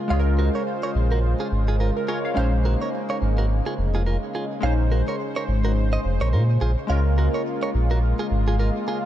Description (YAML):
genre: afrobeats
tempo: 106 BPM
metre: 4/4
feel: swing 58% on 16ths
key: Db major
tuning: A4 = 442 Hz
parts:
  - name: glassy digital keys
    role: accompaniment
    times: 0.0-9.1 s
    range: Ab3 to F5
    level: -28 LUFS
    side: left 1 dB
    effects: chorus
  - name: lush unison pad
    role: sustained chords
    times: 0.0-9.1 s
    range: Db3 to C5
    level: -29 LUFS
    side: equal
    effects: chorus
  - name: direct-recorded clean electric guitar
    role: riff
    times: 0.1-9.0 s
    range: F4 to F5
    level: -30 LUFS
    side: right 4 dB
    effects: digital delay
  - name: sub bass with octave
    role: bass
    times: 0.1-8.7 s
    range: F1 to Bb2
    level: -20 LUFS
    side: equal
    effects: none
room: little or no reverb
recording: dark, warm production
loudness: -20 LUFS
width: side -12 dB against mid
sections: 0.0-6.9 A section; 6.9-9.1 B section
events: none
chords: 0.0 Db6; 2.4 Bbm11; 6.9 Db6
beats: | 0.10 0.67 1.24 1.80 | 2.37 2.93 3.50 4.07 | 4.63 5.20 5.76 6.33 | 6.90 7.46 8.03 8.59